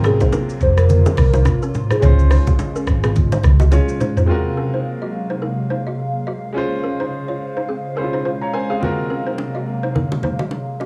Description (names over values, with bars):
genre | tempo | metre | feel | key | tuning
afrobeats | 106 BPM | 4/4 | swing 58% on 16ths | Ab mixolydian | A4 = 441 Hz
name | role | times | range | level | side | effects
clear concert grand piano | accompaniment | 0.0-10.9 s | Gb3 to Bb5 | -28 LUFS | equal | cassette tape, plate reverb
hollow soft pad | sustained chords | 0.0-10.9 s | C3 to F5 | -28 LUFS | equal | ensemble chorus, cassette tape, plate reverb
balafon | riff | 0.0-10.9 s | C4 to Eb5 | -28 LUFS | equal | cassette tape, analog delay
hollow-body short-scale fingered electric bass | bass | 0.0-3.8 s | F1 to Db2 | -16 LUFS | equal | none
afro-pop drum kit | drums | 0.0-4.3 s | hi-hat, kick drum, rim click, shaker, toms | -21 LUFS | equal | cassette tape
bongos and congas | percussion | 0.0-4.2, 8.8-10.9 s | none | -24 LUFS | equal | none
folk marimba with soft mallets | melody | 0.1-3.7 s | Ab4 to C5 | -24 LUFS | equal | cassette tape, analog delay, plate reverb
room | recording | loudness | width
light reverb | home recording on cassette, small room reverb | -18 LUFS | mono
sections
0.0-4.3 A section; 4.3-10.9 B section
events
drum fill 3.7-4.3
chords
0.0 Ab13; 2.0 Dbmaj7; 4.3 Ab13; 6.6 Dbmaj7; 8.8 Ab13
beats
0.33 0.89 1.46 | 2.02 2.59 3.16 3.72 | 4.29 4.86 5.42 5.99 | 6.55 7.12 7.68 8.25 | 8.82 9.38 9.95 10.52